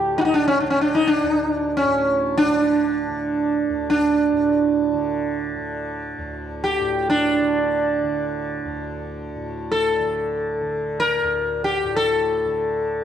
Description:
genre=indian classical, Hindustani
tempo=free time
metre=none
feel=none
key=unclear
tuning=A4 = 440 Hz
part: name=sitar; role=melody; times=0.0-13.0 s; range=C#4 to Bb4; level=-19 LUFS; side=right 1 dB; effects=none
part: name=tanpura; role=drone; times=0.0-13.0 s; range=D2 to D3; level=-30 LUFS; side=equal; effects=none
room=moderate recital hall reverb, RT60 1.4 s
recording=dark, warm production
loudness=-19 LUFS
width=side -9 dB against mid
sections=0.0-9.4 A section; 9.4-13.0 A section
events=none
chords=none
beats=free time

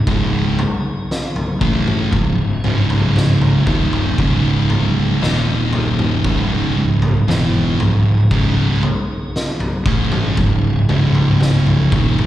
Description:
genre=stoner and doom metal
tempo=58 BPM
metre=4/4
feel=straight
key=C# minor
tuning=A4 = 441 Hz
part: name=tonewheel organ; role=sustained chords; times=0.0-12.3 s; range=C#3 to G#4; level=-29 LUFS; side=left 2 dB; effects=none
part: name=fuzz fingered electric bass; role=bass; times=0.0-12.3 s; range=C#1 to A1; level=-21 LUFS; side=left 1 dB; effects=overdrive
part: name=thick fuzz guitar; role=riff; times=0.1-12.3 s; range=C#2 to A3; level=-22 LUFS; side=left 8 dB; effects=distortion
part: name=thick fuzz guitar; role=riff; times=0.1-12.3 s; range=C#2 to A3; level=-17 LUFS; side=right 3 dB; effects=distortion
part: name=oversized low-tuned drum kit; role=drums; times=0.1-12.3 s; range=kick drum, snare drum, toms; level=-20 LUFS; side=equal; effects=none
room=little or no reverb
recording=live gig heard through the venue's PA, recital hall reverb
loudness=-14 LUFS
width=side -13 dB against mid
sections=0.0-12.3 A section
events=none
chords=0.0 C#m; 5.2 D#5; 6.2 C#m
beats=| 0.07 1.10 2.13 3.16 | 4.19 5.22 6.25 7.28 | 8.31 9.34 10.38 11.41

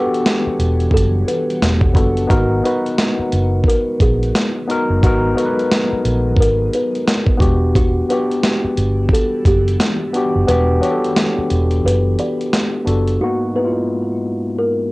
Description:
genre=lo-fi hip hop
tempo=88 BPM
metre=4/4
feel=swing 62% on 16ths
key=unclear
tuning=A4 = 440 Hz
part: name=kalimba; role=melody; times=0.0-14.9 s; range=F#4 to D5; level=-22 LUFS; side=equal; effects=low-pass filter, cassette tape
part: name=tine electric piano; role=accompaniment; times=0.0-14.9 s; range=G#2 to B4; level=-19 LUFS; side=left 1 dB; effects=medium stereo tremolo, low-pass filter, cassette tape
part: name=granular cloud pad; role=sustained chords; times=0.0-13.2 s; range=D#3 to F#5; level=-31 LUFS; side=equal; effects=built-in reverb, low-pass filter, cassette tape
part: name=dusty soul sampler-style drum kit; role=drums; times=0.1-13.2 s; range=hi-hat, kick drum, snare drum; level=-17 LUFS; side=equal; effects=vintage 12-bit sampler grit, cassette tape
part: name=vintage muted fingered electric bass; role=bass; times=0.5-13.2 s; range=E1 to A#1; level=-17 LUFS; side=equal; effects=none
room=light reverb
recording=home recording on cassette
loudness=-14 LUFS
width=side -22 dB against mid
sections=0.0-13.2 A section; 13.2-14.9 B section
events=kick muted 10.5-13.2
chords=0.0 Em9; 2.3 G#m9; 7.4 Em9; 13.2 G#m9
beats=0.25 0.93 1.61 | 2.30 2.98 3.66 4.34 | 5.02 5.71 6.39 7.07 | 7.75 8.43 9.11 9.80 | 10.48 11.16 11.84 12.52 | 13.21 13.89 14.57

